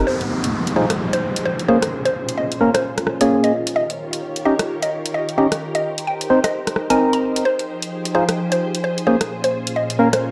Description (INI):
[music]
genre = UK garage, two-step garage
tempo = 130 BPM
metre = 4/4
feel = swing 61% on 16ths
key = F minor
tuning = A4 = 438 Hz
[part]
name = soft string machine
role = sustained chords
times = 0.1-10.3 s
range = Bb2 to Db5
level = -29 LUFS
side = equal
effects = ensemble chorus
[part]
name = percussive organ stab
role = stabs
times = 0.0-10.1 s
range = Bb3 to C5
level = -21 LUFS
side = equal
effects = subtle chorus
[part]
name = mallet-like synth pluck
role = melody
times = 0.1-10.2 s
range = C5 to Bb5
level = -25 LUFS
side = equal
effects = chorus, phaser, delay
[part]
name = downlifter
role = sound effects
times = 0.1-3.8 s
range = none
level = -28 LUFS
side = equal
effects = none
[part]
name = garage drum kit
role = drums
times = 0.2-10.2 s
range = hi-hat, rim click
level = -26 LUFS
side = equal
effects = studio reverb
[sound]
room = moderate plate reverb, RT60 1.1 s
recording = dark, warm production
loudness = -20 LUFS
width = mono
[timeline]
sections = 0.1-10.3 A section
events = band accent 0.0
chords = 0.1 Fm7; 1.7 Bbm7; 3.5 Eb7; 5.6 Cm7; 7.5 Fm7; 9.1 Bbm7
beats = | 0.07 0.53 0.99 1.45 | 1.92 2.38 2.84 3.30 | 3.76 4.22 4.68 5.15 | 5.61 6.07 6.53 6.99 | 7.45 7.92 8.38 8.84 | 9.30 9.76 10.22